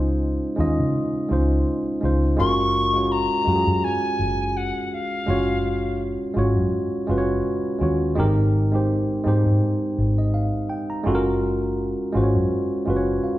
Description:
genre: R&B, neo-soul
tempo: 83 BPM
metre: 4/4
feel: swing 56% on 16ths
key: F# major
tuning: A4 = 439 Hz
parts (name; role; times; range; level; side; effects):
- tine electric piano; accompaniment; 0.0-13.4 s; G#3 to A#5; -22 LUFS; right 1 dB; none
- vintage muted fingered electric bass; bass; 0.0-13.2 s; F#1 to C#3; -23 LUFS; equal; none
- mellow soprano recorder; melody; 2.4-6.0 s; E#5 to C#6; -23 LUFS; left 1 dB; none
room: wet recital hall reverb, RT60 1.4 s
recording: recorded in a church or concert hall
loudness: -19 LUFS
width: side -15 dB against mid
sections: 0.0-13.4 A section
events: none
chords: 0.0 C#maj9; 2.4 F#maj9; 8.2 G#maj9; 11.1 F#maj9

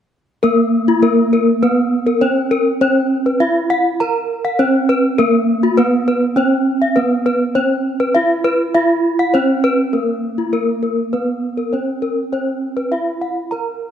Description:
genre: gamelan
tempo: 101 BPM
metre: 4/4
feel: straight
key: Bb pelog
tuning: A4 = 437 Hz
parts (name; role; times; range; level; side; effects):
- gamelan-type bronze metallophone; melody; 0.4-13.9 s; Bb3 to Bb4; -16 LUFS; right 2 dB; none
- gamelan-type bronze metallophone; arpeggios; 0.4-13.7 s; F4-45c to Bb5; -17 LUFS; left 3 dB; none
room: moderate recital hall reverb, RT60 1.6 s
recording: none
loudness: -14 LUFS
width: side -9 dB against mid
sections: 0.4-9.9 A section; 9.9-13.9 A section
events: none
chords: none

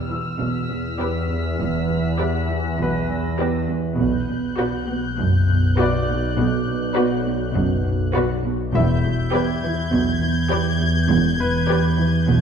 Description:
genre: cinematic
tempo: 101 BPM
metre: 4/4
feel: straight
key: E minor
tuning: A4 = 439 Hz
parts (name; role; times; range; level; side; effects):
- muted studio violin section; melody; 0.0-12.1 s; D5; -35 LUFS; left 4 dB; none
- muted symphonic violin section; second line; 0.0-12.1 s; B4; -30 LUFS; left 4 dB; none
- muted symphonic viola section; accompaniment; 0.0-12.1 s; F#4 to G4; -28 LUFS; right 1 dB; none
- analog drone; drone; 0.0-12.4 s; B1 to E2; -23 LUFS; equal; chorus
- muted symphonic violin section; texture; 0.0-12.4 s; E6 to B6; -30 LUFS; left 5 dB; none
- muted symphonic cello section; riff; 0.1-12.4 s; E2 to B3; -26 LUFS; right 3 dB; none
- bright grand piano; texture; 0.1-12.4 s; E4 to E6; -30 LUFS; left 1 dB; none
- muted symphonic cello section; bass; 0.4-12.4 s; E2 to B2; -27 LUFS; right 2 dB; none
- muted symphonic double bass section; bass; 0.4-12.4 s; E1 to B1; -25 LUFS; equal; none
room: wet scoring stage reverb, RT60 2.1 s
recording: minimal, uncompressed stereo recording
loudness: -18 LUFS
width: side -7 dB against mid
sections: 0.0-12.4 A section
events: none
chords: 0.0 Em7; 4.0 Bm; 8.7 Em7

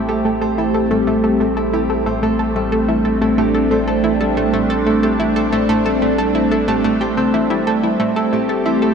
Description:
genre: ambient, sequencer-driven space music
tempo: 91 BPM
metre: 4/4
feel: straight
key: A minor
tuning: A4 = 440 Hz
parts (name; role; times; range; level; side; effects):
- phased analog pad; sustained chords; 0.0-8.9 s; A3 to G4; -17 LUFS; equal; phaser, chorus
- concert harp; arpeggios; 0.0-8.9 s; G3 to C5; -23 LUFS; equal; auto-pan, tape echo
- analog pluck; riff; 0.0-8.9 s; A3 to A4; -20 LUFS; equal; chorus, tape echo
- round analog bass; bass; 0.0-8.9 s; A1; -29 LUFS; equal; none
room: wet lush hall reverb, RT60 2.6 s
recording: dark, warm production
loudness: -14 LUFS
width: side -6 dB against mid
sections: 0.0-8.9 A section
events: none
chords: 0.0 Am7

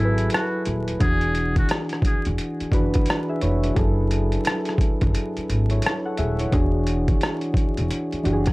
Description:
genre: lo-fi hip hop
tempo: 87 BPM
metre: 4/4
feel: swing 63% on 16ths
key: unclear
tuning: A4 = 439 Hz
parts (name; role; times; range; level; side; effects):
- trumpet with metal mute; melody; 0.0-2.2 s; E4 to G#4; -28 LUFS; equal; low-pass filter
- soft electric-piano-like synth keys; accompaniment; 0.0-8.5 s; E3 to F#5; -24 LUFS; equal; chorus, cassette tape, low-pass filter
- upright bass; bass; 0.0-8.5 s; D#1 to G#1; -23 LUFS; equal; tube saturation
- boom bap sampler-style drum kit; drums; 0.2-8.5 s; hi-hat, kick drum, rim click; -22 LUFS; equal; overdrive
room: little or no reverb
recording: dry, gritty hardware recording, vinyl crackle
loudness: -20 LUFS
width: side -22 dB against mid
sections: 0.0-8.5 A section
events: none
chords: 0.0 F#m9; 1.0 E9; 3.8 F#m9; 6.5 E9

